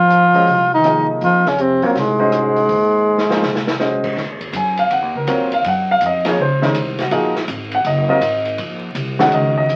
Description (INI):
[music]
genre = modal jazz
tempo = 163 BPM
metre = 4/4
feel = swing 65% on 8ths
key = Eb dorian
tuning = A4 = 445 Hz
[part]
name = breathy tenor saxophone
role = melody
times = 0.0-3.8 s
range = Gb3 to F4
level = -16 LUFS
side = equal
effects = none
[part]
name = breathy bass clarinet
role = second line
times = 0.0-3.8 s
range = Gb2 to F3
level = -24 LUFS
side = equal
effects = none
[part]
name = upright bass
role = bass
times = 0.0-9.8 s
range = Gb1 to Gb2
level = -27 LUFS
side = equal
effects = none
[part]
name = open jazz drum kit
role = drums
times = 0.1-9.8 s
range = crash cymbal, hi-hat, kick drum, ride cymbal, rim click, snare drum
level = -28 LUFS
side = equal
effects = none
[part]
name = clear baby grand piano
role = accompaniment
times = 0.3-9.8 s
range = Eb3 to Ab5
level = -20 LUFS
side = equal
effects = none
[sound]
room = moderate club reverb, RT60 0.8 s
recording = very old 78 rpm record, vinyl crackle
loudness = -17 LUFS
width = mono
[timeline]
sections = 0.0-4.2 A section; 4.2-9.8 B section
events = drum fill 3.1-3.8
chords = 0.0 Fm; 4.2 Ebm9